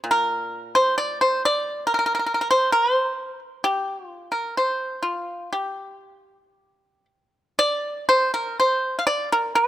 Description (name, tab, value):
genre	chinese traditional, Chinese solo plucked strings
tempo	55-67 BPM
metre	4/4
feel	rubato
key	unclear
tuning	A4 = 440 Hz
part	pipa	solo	0.0-9.7 s	Bb2 to F5	-20 LUFS	equal	none
room	light reverb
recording	close, detailed microphones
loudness	-20 LUFS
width	side -13 dB against mid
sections	0.0-7.6 A section; 7.6-9.7 B section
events	none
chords	none